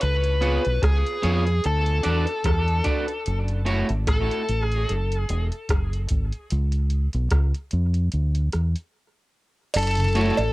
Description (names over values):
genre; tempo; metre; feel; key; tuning
dub reggae; 74 BPM; 4/4; swing 56% on 16ths; F# minor; A4 = 441 Hz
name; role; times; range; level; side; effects
bluesy overdriven lead guitar; melody; 0.0-10.5 s; G#4 to B4; -27 LUFS; left 1 dB; distortion, cassette tape, tape echo
deep dub fingered electric bass; bass; 0.0-10.5 s; E1 to E#2; -22 LUFS; equal; none
soft vintage rhythm box; drums; 0.0-10.5 s; crash cymbal, hi-hat, kick drum, rim click; -26 LUFS; equal; cassette tape
electric guitar at the edge of break-up; accompaniment; 0.4-3.9, 10.2-10.4 s; A3 to D5; -29 LUFS; right 2 dB; cassette tape, tape echo
cowbell and jawbone-type rattle; percussion; 9.7-10.5 s; none; -28 LUFS; right 4 dB; none
mellow tonewheel organ; accompaniment; 10.0-10.3 s; F#2 to F#4; -27 LUFS; left 1 dB; chorus vibrato, cassette tape
room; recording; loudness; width
light reverb; home recording on cassette; -21 LUFS; side -19 dB against mid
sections
0.0-9.7 A section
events
break 0.0-9.7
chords
0.0 C#7; 1.6 D6; 3.3 F#m7; 6.5 C#; 8.1 Dsus2; 9.7 F#m7